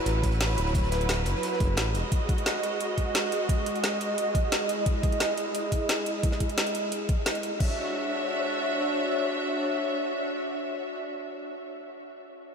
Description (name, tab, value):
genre	liquid drum and bass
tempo	175 BPM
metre	4/4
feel	straight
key	unclear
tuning	A4 = 439 Hz
part	warm studio string section	sustained chords	0.0-10.9 s	F#3 to E5	-28 LUFS	equal	low-pass filter
part	smooth synth bass	bass	0.1-2.0 s	D1 to A1	-28 LUFS	equal	none
part	crunchy breakbeat drum kit	drums	0.1-2.0 s	hi-hat, snare drum	-42 LUFS	equal	none
part	garage drum kit	drums	0.1-7.7 s	crash cymbal, hi-hat, snare drum	-31 LUFS	equal	overdrive, studio reverb
part	electronic kick drum	drums	0.2-7.7 s	none	-26 LUFS	equal	overdrive, studio reverb
room	wet huge ambient reverb, RT60 8.5 s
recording	dreamy mix soaked in reverb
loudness	-25 LUFS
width	side -6 dB against mid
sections	0.0-7.6 A section; 7.6-10.3 B section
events	filter sweep on string section 0.0-7.6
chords	0.0 Dadd9; 1.9 Emaj9; 7.6 Dmaj9